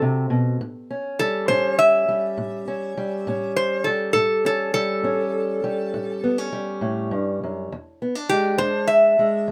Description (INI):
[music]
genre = acoustic country blues, solo or duo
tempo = 68 BPM (dotted quarters)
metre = 12/8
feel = straight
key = A mixolydian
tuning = A4 = 440 Hz
[part]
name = fingerpicked steel-string acoustic guitar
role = accompaniment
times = 0.0-9.5 s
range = E2 to F#4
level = -27 LUFS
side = equal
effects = none
[part]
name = metal-body resonator slide guitar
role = melody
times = 1.2-9.5 s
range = G4 to E5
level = -22 LUFS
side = equal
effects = none
[sound]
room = little or no reverb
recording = close, detailed microphones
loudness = -22 LUFS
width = mono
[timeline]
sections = 0.0-9.5 A section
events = resonator guitar played with a steel bar solo 0.0-9.5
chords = 0.0 D7 (rootless); 0.6 A7; 7.7 E7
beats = | 0.61 1.49 2.38 3.27 | 4.15 5.04 5.93 6.82 | 7.70 8.59 9.48